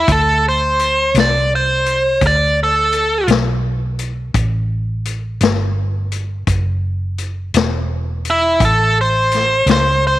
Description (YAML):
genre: slow blues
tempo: 56 BPM (dotted quarters)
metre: 12/8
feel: straight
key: unclear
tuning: A4 = 440 Hz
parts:
  - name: biting lead guitar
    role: melody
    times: 0.0-10.2 s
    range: E4 to D5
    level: -14 LUFS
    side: right 1 dB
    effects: overdrive, slapback echo
  - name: vintage muted fingered electric bass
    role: bass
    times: 0.0-10.2 s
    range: E1 to D2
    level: -19 LUFS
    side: right 1 dB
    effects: none
  - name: vintage drum kit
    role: drums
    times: 0.1-9.8 s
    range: hi-hat, kick drum, snare drum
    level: -18 LUFS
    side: left 4 dB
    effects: none
room: light reverb, studio reverb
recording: 1960s-style stereo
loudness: -14 LUFS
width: side -15 dB against mid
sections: 0.0-10.2 A section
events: lead electric guitar solo 0.0-10.2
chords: 0.1 D5; 4.3 A7(no3)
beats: | 0.09 1.15 2.21 3.28 | 4.34 5.41 6.47 7.54 | 8.60 9.67